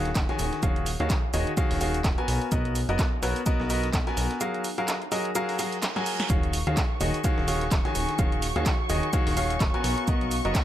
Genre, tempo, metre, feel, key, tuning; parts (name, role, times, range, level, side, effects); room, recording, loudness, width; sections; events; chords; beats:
piano house; 127 BPM; 4/4; swing 57% on 16ths; Eb minor; A4 = 439 Hz
bright concert grand piano; riff; 0.0-10.6 s; Eb3 to Ab5; -28 LUFS; left 1 dB; sidechain pumping, tape echo
plucky analog bass; bass; 0.0-10.5 s; Eb1 to Eb2; -29 LUFS; equal; sidechain pumping
deep dark ambient pad; texture; 0.5-10.6 s; B3 to A#5; -40 LUFS; equal
breakbeat sampler-style drum kit; drums; 0.1-10.6 s; hi-hat, shaker, snare drum; -38 LUFS; right 1 dB; sidechain pumping on hats, high-pass filter on hats, sidechain pumping on perc, high-pass filter on perc, high-pass filter on snare, high-pass filter on room
punchy analog drum machine; drums; 0.1-10.6 s; handclaps, hi-hat, snare drum; -33 LUFS; right 1 dB
electronic kick drum; drums; 0.2-10.6 s; -26 LUFS; equal
reverse cymbal; sound effects; 5.7-6.3 s; -36 LUFS; right 7 dB
muted studio violin section; sustained chords; 6.3-10.6 s; Db6; -35 LUFS; right 1 dB; sidechain pumping
little or no reverb; -23 LUFS; side -12 dB against mid
0.0-10.6 A section
reverse cymbal 5.7-6.3; drum fill 5.8-6.3
0.0 Ebm11; 2.3 Bmaj7; 4.4 Gbmaj9; 6.3 Ebm11; 9.8 Bmaj7
0.16 | 0.63 1.10 1.57 2.05 | 2.52 2.99 3.46 3.94 | 4.41 4.88 5.35 5.83 | 6.30 6.77 7.24 7.71 | 8.19 8.66 9.13 9.61 | 10.08 10.55